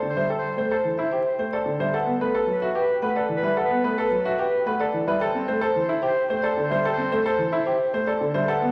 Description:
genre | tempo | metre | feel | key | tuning
classical, minimalist pattern music | 110 BPM | 3/4 | straight | unclear | A4 = 440 Hz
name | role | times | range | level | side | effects
vibraphone with soft mallets | melody | 0.0-8.7 s | A4 to G5 | -27 LUFS | equal | none
warm grand piano | accompaniment | 0.0-8.7 s | D3 to C4 | -31 LUFS | equal | none
clear grand piano | arpeggios | 0.0-8.7 s | E4 to C5 | -29 LUFS | equal | none
warm clarinet | second line | 0.1-8.7 s | B4 to C5 | -32 LUFS | equal | none
room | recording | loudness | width
wet recital hall reverb, RT60 1.6 s | vinyl crackle | -24 LUFS | mono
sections
0.0-8.7 A section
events
none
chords
0.0 Am7; 1.9 Gmaj9; 5.2 Am7

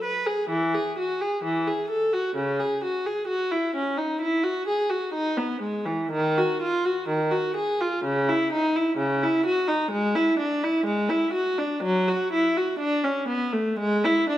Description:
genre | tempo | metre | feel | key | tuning
classical, baroque-style suite movement for unaccompanied viola | 64 BPM | 4/4 | rubato | unclear | A4 = 440 Hz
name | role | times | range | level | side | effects
warm viola | solo | 0.0-14.4 s | C#3 to B4 | -22 LUFS | equal | none
room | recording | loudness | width
wet recital hall reverb, RT60 1.5 s | none | -22 LUFS | side -13 dB against mid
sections
0.0-14.4 A section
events
none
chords
none

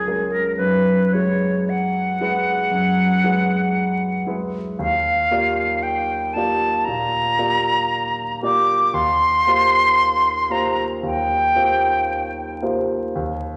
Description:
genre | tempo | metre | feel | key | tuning
classical, impressionist duo for flute and grand piano | 58 BPM | 4/4 | rubato | unclear | A4 = 440 Hz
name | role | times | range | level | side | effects
bright concert flute | melody | 0.0-12.6 s | Ab4 to D6 | -21 LUFS | equal | none
warm grand piano | accompaniment | 0.0-13.6 s | Db2 to D5 | -24 LUFS | equal | none
room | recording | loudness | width
wet recital hall reverb, RT60 1.5 s | vinyl crackle, nothing above 10.3 kHz | -19 LUFS | mono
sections
0.0-13.6 A section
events
none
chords
0.0 Gbadd9; 0.6 Eadd9/F#; 4.8 Ebmaj9; 8.9 F11/Eb

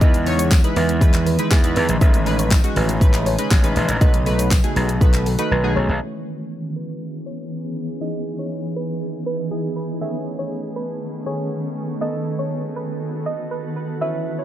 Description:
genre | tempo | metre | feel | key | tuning
dance-pop | 120 BPM | 4/4 | straight | unclear | A4 = 438 Hz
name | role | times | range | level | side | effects
soft round pluck | melody | 0.0-14.4 s | G#4 to E5 | -29 LUFS | right 2 dB | chorus, sidechain pumping, low-pass filter
chorused retro synth keys | accompaniment | 0.0-14.4 s | D#3 to C#5 | -27 LUFS | equal | sidechain pumping, low-pass filter
shimmering ambient pad | sustained chords | 0.0-14.4 s | C#3 to A4 | -27 LUFS | right 1 dB | chorus, built-in reverb, sidechain pumping, low-pass filter
gritty slap bass | bass | 0.0-6.0 s | A1 to E2 | -20 LUFS | equal | overdrive, sidechain pumping
pop drum kit | drums | 0.0-5.5 s | handclaps, hi-hat, kick drum, shaker, snare drum | -16 LUFS | equal | none
tambourine | percussion | 0.5-4.6 s | none | -35 LUFS | left 9 dB | none
room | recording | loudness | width
little or no reverb | none | -18 LUFS | side -12 dB against mid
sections
0.0-6.0 A section; 6.0-14.4 B section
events
drop 0.0-6.0; drums muted 5.5-6.0; filter sweep 6.0-14.4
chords
0.0 Emaj7; 2.0 Amaj9#11; 4.0 B7; 6.0 C#m7; 8.0 Emaj7; 10.0 Amaj9#11; 12.0 B7

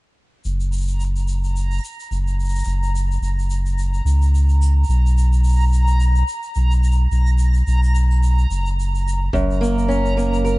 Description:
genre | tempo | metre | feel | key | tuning
folktronica | 108 BPM | 4/4 | swing 56% on 16ths | F# major | A4 = 440 Hz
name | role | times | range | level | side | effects
shaker | drums | 0.4-10.6 s | none | -38 LUFS | left 3 dB | none
warm sub bass | bass | 0.5-10.6 s | F#1 to C#2 | -16 LUFS | equal | none
backwards swelling texture | texture | 1.0-10.6 s | A#5 | -30 LUFS | right 1 dB | built-in reverb, plate reverb
fingerpicked acoustic archtop guitar | arpeggios | 9.3-10.6 s | F#2 to A#4 | -19 LUFS | right 1 dB | ping-pong delay, plate reverb
kick drum | drums | 9.3-9.5 s | none | -26 LUFS | equal | none
room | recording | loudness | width
little or no reverb | dark, warm production, vinyl crackle, nothing above 10.5 kHz | -16 LUFS | side -21 dB against mid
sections
0.5-10.6 A section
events
none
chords
0.5 F#; 4.9 B5; 9.3 F#

